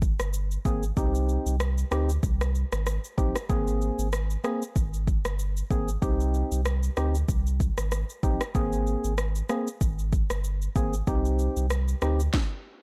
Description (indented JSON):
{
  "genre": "dancehall",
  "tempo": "95 BPM",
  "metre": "4/4",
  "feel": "swing 56% on 16ths",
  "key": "C minor",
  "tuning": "A4 = 439 Hz",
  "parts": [
    { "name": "warm sub bass", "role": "bass", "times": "0.0-12.3 s", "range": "G1 to D2", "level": "-29 LUFS", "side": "equal", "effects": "none" },
    { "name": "afro-pop drum kit", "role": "drums", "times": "0.0-12.5 s", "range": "kick drum, rim click, shaker, snare drum", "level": "-31 LUFS", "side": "equal", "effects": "none" },
    { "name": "percussive organ stab", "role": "accompaniment", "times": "0.7-12.2 s", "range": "Bb3 to Ab4", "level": "-33 LUFS", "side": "equal", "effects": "chorus" }
  ],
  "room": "little or no reverb",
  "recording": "dark, warm production",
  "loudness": "-27 LUFS",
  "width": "mono",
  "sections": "0.0-12.8 A section",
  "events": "stop 12.3-12.8",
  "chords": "0.0 Abadd9; 1.0 Cm; 3.5 Abadd9; 6.0 Cm; 8.5 Abadd9; 11.1 Cm"
}